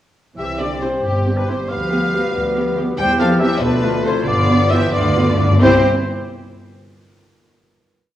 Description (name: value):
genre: quick classical-period movement for symphony orchestra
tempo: 91 BPM (dotted quarters)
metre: 6/8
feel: uneven beats, rubato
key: C major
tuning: A4 = 440 Hz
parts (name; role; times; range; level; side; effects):
- warm French horn section; sustained chords; 0.3-5.8 s; E3 to C5; -24 LUFS; left 3 dB; none
- rich studio violin section; melody; 0.4-5.9 s; G4 to G5; -26 LUFS; left 2 dB; none
- bright silver concert flute; second line; 0.4-5.9 s; C4 to C5; -28 LUFS; left 2 dB; none
- clear chamber violin section; second line; 0.4-5.9 s; G4 to G5; -29 LUFS; left 4 dB; none
- mellow clarinet; second line; 0.4-5.8 s; E4 to G4; -27 LUFS; left 1 dB; none
- warm oboe; second line; 0.4-5.8 s; G4 to G5; -24 LUFS; equal; none
- mellow bassoon; accompaniment; 0.4-5.8 s; A3 to C4; -28 LUFS; equal; none
- clear chamber double bass section; bass; 0.4-5.9 s; G1 to E2; -22 LUFS; right 2 dB; none
- rich symphonic cello section; bass; 0.4-5.9 s; G2 to C4; -22 LUFS; equal; none
- warm studio viola section; accompaniment; 0.6-5.9 s; A3 to G4; -23 LUFS; right 1 dB; none
- timpani; percussion; 4.3-5.8 s; G2 to C3; -20 LUFS; left 1 dB; none
room: moderate scoring stage reverb, RT60 1.5 s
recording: worn, warbling old tape, cassette tape, warbly pitch drift, small room ambience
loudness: -14 LUFS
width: side -12 dB against mid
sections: 0.4-5.6 A section; 5.6-7.0 final chord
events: timpani fill 4.3-5.6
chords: 0.4 C; 1.7 G7/D; 3.0 C/E; 3.6 Dm; 4.3 G7; 5.6 C